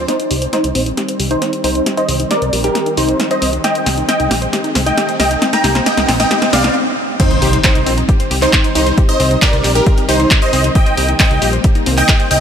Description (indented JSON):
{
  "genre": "uplifting trance",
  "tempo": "135 BPM",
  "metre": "4/4",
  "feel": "straight",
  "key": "C minor",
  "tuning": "A4 = 444 Hz",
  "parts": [
    { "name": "supersaw stab", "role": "melody", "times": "0.0-12.4 s", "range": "Eb4 to Bb5", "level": "-16 LUFS", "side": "right 1 dB", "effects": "sidechain pumping, low-pass filter, dub echo" },
    { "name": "lush unison pad", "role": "sustained chords", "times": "0.0-12.4 s", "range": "Eb3 to C4", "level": "-25 LUFS", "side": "equal", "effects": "chorus, sidechain pumping" },
    { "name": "wide unison pluck", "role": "arpeggios", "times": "0.0-12.4 s", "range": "C4 to C5", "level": "-23 LUFS", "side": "left 2 dB", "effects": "sidechain pumping, dub echo" },
    { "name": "plucky analog bass", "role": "bass", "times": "0.0-12.4 s", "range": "Bb1 to C2", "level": "-18 LUFS", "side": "equal", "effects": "sidechain pumping" },
    { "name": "swell, riser and impact", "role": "sound effects", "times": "0.0-9.0 s", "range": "none", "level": "-24 LUFS", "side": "equal", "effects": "none" },
    { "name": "punchy analog drum machine", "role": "drums", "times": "0.1-12.4 s", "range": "crash cymbal, handclaps, hi-hat, snare drum", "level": "-18 LUFS", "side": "equal", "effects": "sidechain pumping on hats, sidechain pumping on cymbals" },
    { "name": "electronic kick drum", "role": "drums", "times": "7.2-12.2 s", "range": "none", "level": "-13 LUFS", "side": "equal", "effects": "none" }
  ],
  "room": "light reverb, digital ambience",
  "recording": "none",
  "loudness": "-11 LUFS",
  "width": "side -8 dB against mid",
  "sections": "0.1-7.2 A section; 7.2-12.4 B section",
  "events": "build-up 0.1-7.2; drum fill 0.1-6.8; riser 0.1-6.8; filter sweep on supersaw synth 0.1-7.2; filter sweep on synth pluck 0.1-7.2; stop 6.8-7.2; drop 7.2-12.4; impact 7.2-9.0",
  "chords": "0.1 Cm"
}